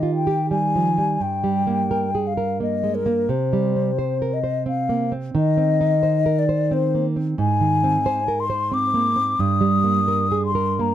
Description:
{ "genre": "romantic duo for flute and classical guitar", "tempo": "88 BPM", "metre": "3/4", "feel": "rubato", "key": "unclear", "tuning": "A4 = 440 Hz", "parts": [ { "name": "mellow hollow concert flute", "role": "melody", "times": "0.0-10.9 s", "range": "Bb4 to Eb6", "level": "-22 LUFS", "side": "left 5 dB", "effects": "none" }, { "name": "nylon-string guitar", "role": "accompaniment", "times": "0.0-10.9 s", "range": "G2 to C5", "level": "-21 LUFS", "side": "right 3 dB", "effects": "none" } ], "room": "little or no reverb", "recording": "close, detailed microphones", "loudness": "-18 LUFS", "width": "side -11 dB against mid", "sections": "0.0-10.9 A section", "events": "none", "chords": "0.0 Eb; 1.2 Gm; 3.3 C5; 5.4 Cm/Eb; 7.4 Ab; 9.4 Eb/G" }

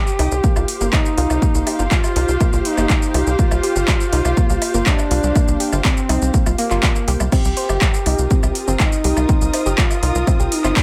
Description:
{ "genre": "melodic techno", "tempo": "122 BPM", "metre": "4/4", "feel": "straight", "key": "unclear", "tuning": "A4 = 440 Hz", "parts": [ { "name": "expressive portamento lead", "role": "melody", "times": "0.0-10.8 s", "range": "Bb3 to G4", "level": "-25 LUFS", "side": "equal", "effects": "chorus, sidechain pumping, tape echo" }, { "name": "muted symphonic string section", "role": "texture", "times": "0.0-10.8 s", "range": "F4 to Eb6", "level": "-30 LUFS", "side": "equal", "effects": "sidechain pumping" }, { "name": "deep house drum kit", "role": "drums", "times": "0.1-10.8 s", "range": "crash cymbal, handclaps, hi-hat, shaker, woodblock", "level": "-25 LUFS", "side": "equal", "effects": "overdrive, small room ambience" }, { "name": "woody wave-folded pluck", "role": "arpeggios", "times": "0.2-10.8 s", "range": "Bb3 to G6", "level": "-28 LUFS", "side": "equal", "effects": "chorus, sidechain pumping, digital delay" }, { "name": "tight sequencer bass", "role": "bass", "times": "0.2-10.7 s", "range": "G1 to C2", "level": "-22 LUFS", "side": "equal", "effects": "tube saturation, sidechain pumping" }, { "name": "electronic kick drum", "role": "drums", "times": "0.4-10.8 s", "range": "none", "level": "-19 LUFS", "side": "equal", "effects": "small room ambience" } ], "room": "little or no reverb", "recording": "none", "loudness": "-17 LUFS", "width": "mono", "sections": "0.0-10.8 A section", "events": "none", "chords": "0.0 Ebadd9" }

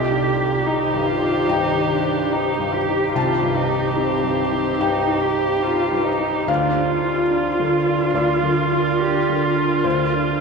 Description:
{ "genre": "neoclassical piano and strings", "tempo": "72 BPM", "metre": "4/4", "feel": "rubato", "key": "C dorian", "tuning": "A4 = 441 Hz", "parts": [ { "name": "muted cello", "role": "second line", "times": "0.0-10.4 s", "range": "C4 to G4", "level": "-23 LUFS", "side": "right 3 dB", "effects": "none" }, { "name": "felt-muted upright piano", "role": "accompaniment", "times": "0.0-10.4 s", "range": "C2 to A5", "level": "-22 LUFS", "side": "left 2 dB", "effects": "none" }, { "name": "muted viola", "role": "accompaniment", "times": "0.0-10.4 s", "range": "F4 to G4", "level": "-23 LUFS", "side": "right 1 dB", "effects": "none" }, { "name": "ethereal airy pad", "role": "sustained chords", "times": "0.0-10.4 s", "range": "Eb3 to C5", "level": "-28 LUFS", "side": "left 3 dB", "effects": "ensemble chorus, built-in reverb" } ], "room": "wet cathedral reverb, RT60 6.6 s", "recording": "recorded in a church or concert hall", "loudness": "-17 LUFS", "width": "side -4 dB against mid", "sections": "0.0-10.4 A section", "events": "none", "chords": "0.0 Cm; 6.5 Bb/D; 9.8 Dm" }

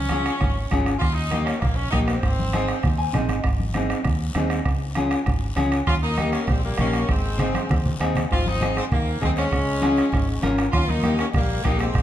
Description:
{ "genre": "latin, cumbia", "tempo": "198 BPM", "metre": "4/4", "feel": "straight", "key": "Ab major", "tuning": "A4 = 440 Hz", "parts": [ { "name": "edgy saxophone section", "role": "melody", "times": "0.0-3.2, 5.9-12.0 s", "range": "Bb3 to F4", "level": "-28 LUFS", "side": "equal", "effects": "none" }, { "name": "fingered electric bass", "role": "bass", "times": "0.0-12.0 s", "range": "Ab1 to Eb2", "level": "-26 LUFS", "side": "equal", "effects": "none" }, { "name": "clean electric guitar", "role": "accompaniment", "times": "0.1-11.9 s", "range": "Bb3 to Ab5", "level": "-26 LUFS", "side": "left 1 dB", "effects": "none" }, { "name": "bombo", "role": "percussion", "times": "0.1-12.0 s", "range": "none", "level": "-26 LUFS", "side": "right 2 dB", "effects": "none" }, { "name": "congas", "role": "percussion", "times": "0.1-12.0 s", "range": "none", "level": "-30 LUFS", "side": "left 1 dB", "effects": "none" }, { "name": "guiro", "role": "percussion", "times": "0.1-12.0 s", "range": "none", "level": "-39 LUFS", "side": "left 4 dB", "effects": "none" }, { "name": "bright trombone", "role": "second line", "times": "5.9-12.0 s", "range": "Eb3 to Db4", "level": "-31 LUFS", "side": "left 3 dB", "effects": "none" } ], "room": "moderate large studio reverb, RT60 1.2 s", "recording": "dark, warm production", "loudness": "-20 LUFS", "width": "side -12 dB against mid", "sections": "0.0-8.3 A section; 8.3-12.0 A section", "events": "clean electric guitar fill 2.8-3.4; drum fill 7.1-8.3", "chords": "0.0 Db; 1.0 Eb; 2.2 Ab; 4.7 Db; 5.9 Eb7; 7.1 Ab; 9.5 Db; 10.7 Eb" }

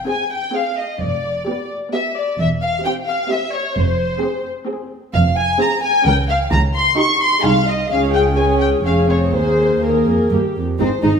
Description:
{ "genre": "quick classical-period movement for string orchestra", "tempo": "130 BPM", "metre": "3/4", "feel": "rubato", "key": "unclear", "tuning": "A4 = 437 Hz", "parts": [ { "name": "dark chamber violin section", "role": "second line", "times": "0.0-11.1 s", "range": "Bb4 to Db6", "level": "-22 LUFS", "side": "left 1 dB", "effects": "none" }, { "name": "dark studio violin section", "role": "melody", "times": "0.1-10.3 s", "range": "Bb4 to Db6", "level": "-21 LUFS", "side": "left 3 dB", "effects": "none" }, { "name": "warm studio viola section", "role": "accompaniment", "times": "0.1-11.1 s", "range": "Ab3 to Bb4", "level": "-20 LUFS", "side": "equal", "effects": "none" }, { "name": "dark studio double bass section", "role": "bass", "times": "1.0-11.1 s", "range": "E1 to Eb2", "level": "-22 LUFS", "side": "right 1 dB", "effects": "none" }, { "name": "warm studio cello section", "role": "bass", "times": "1.0-11.2 s", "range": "C2 to Eb4", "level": "-21 LUFS", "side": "right 2 dB", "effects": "none" } ], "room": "wet recital hall reverb, RT60 1.5 s", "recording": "none", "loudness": "-15 LUFS", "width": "side -6 dB against mid", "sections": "0.0-10.8 A section", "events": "none", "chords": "0.0 Fm; 1.0 G7/F; 2.4 C/E; 3.8 Fm; 6.1 Bbm/Db; 6.5 Eb7/Db; 7.4 Ab/C; 7.9 Db; 9.3 Ebsus4; 10.3 Eb (rootless)" }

